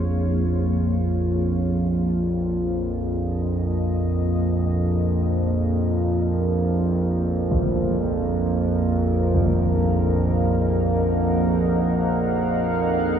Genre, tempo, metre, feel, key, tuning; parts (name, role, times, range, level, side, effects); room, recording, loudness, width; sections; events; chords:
dark ambient drone; free time; Bb minor; A4 = 439 Hz
deep dark ambient pad; sustained chords; 0.0-13.2 s; Bb3 to Gb5; -26 LUFS; right 1 dB; chorus, built-in reverb
gamelan-type bronze metallophone; arpeggios; 0.0-5.4 s; F3 to Ab4; -34 LUFS; left 6 dB; analog delay
analog drone; drone; 0.0-13.2 s; Bb1 to F2; -21 LUFS; right 1 dB; chorus
impact; percussion; 7.5-9.5 s; -28 LUFS; right 1 dB; low-pass filter on sfx
wet lush hall reverb, RT60 3.1 s; dreamy mix soaked in reverb, small room ambience; -20 LUFS; side -8 dB against mid
0.0-13.2 A section
fade-in on ambient pad 0.0-13.2
0.0 Bbm7; 7.5 Ebm/Bb